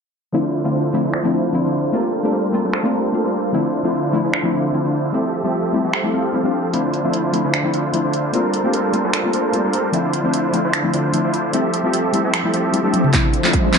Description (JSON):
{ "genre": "future bass", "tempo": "150 BPM", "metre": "4/4", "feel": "swing 54% on 16ths, half-time", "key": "D minor", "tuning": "A4 = 440 Hz", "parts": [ { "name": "soft round pluck", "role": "accompaniment", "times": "0.3-13.8 s", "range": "F3 to G4", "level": "-21 LUFS", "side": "left 3 dB", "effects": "chorus, sidechain pumping, ping-pong delay" }, { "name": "supersaw chords", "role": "riff", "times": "0.3-13.8 s", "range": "D3 to F5", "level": "-19 LUFS", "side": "right 1 dB", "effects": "sidechain pumping, low-pass filter, ping-pong delay" }, { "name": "dubstep drum kit", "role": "drums", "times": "1.1-13.8 s", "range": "finger snaps, handclaps, hi-hat, toms", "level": "-22 LUFS", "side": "equal", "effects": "overdrive, low-pass filter on snare, low-pass filter on hats, low-pass filter on toms, low-pass filter on room" }, { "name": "ethereal airy pad", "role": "sustained chords", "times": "13.3-13.8 s", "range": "F3 to E5", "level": "-24 LUFS", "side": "left 1 dB", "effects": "ensemble chorus, built-in reverb, sidechain pumping" }, { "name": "electronic kick drum", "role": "drums", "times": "13.1-13.6 s", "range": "none", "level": "-18 LUFS", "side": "right 1 dB", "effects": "overdrive" }, { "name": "riser", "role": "sound effects", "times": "13.4-13.8 s", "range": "none", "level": "-24 LUFS", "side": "equal", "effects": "none" } ], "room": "wet plate reverb, RT60 1.0 s, digital ambience", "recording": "dreamy mix soaked in reverb, nothing above 10.7 kHz", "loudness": "-16 LUFS", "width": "side -6 dB against mid", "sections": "0.3-13.1 A section", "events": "drum fill 12.9, 13.1-13.8; riser 13.4-13.8", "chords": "0.3 Dm9; 1.9 Gm11; 3.5 Dm9; 5.1 Fmaj9; 6.7 Dm9; 8.3 Gm11; 9.9 Dm9; 11.5 Fmaj9; 13.1 Dm9" }